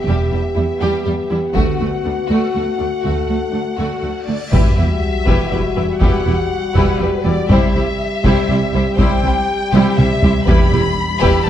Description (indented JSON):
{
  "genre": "cinematic, epic orchestral film score",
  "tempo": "121 BPM",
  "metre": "3/4",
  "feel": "straight",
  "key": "E minor",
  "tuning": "A4 = 443 Hz",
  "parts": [
    { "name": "warm symphonic violin section", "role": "melody", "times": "0.0-11.5 s", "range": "B4 to B5", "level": "-24 LUFS", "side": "left 4 dB", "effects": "none" },
    { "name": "mellow French horn section", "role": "sustained chords", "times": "0.0-11.5 s", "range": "F#3 to G4", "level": "-22 LUFS", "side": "left 3 dB", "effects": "none" },
    { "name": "sub drop and cymbal swell", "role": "sound effects", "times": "0.0-0.1, 4.3-6.0 s", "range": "none", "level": "-23 LUFS", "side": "equal", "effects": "none" },
    { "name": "warm symphonic violin section", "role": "second line", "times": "0.1-11.5 s", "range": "D4 to C5", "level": "-25 LUFS", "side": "left 4 dB", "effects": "none" },
    { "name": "clear symphonic viola section", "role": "accompaniment", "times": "0.1-11.5 s", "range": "G3 to E4", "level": "-22 LUFS", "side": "right 2 dB", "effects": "none" },
    { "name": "rich symphonic double bass section", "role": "bass", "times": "0.1-11.5 s", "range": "E1 to D2", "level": "-21 LUFS", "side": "right 3 dB", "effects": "none" },
    { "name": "warm symphonic cello section", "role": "bass", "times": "0.1-11.5 s", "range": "C2 to E2", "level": "-21 LUFS", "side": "right 2 dB", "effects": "none" },
    { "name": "taiko ensemble", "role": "drums", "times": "1.6-11.5 s", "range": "none", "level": "-17 LUFS", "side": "equal", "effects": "none" },
    { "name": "timpani", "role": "percussion", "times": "10.5-11.2 s", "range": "E2", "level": "-22 LUFS", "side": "left 1 dB", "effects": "none" }
  ],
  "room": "moderate scoring stage reverb, RT60 1.6 s",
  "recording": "dark, warm production",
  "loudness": "-14 LUFS",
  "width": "side -11 dB against mid",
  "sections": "0.0-4.5 A section; 4.5-11.5 B section",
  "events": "cymbal swell 4.3; impact 4.5-6.0; drum fill 9.7-10.5",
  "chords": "0.0 Em; 1.6 D; 4.5 Emadd9; 7.5 C; 10.5 Em"
}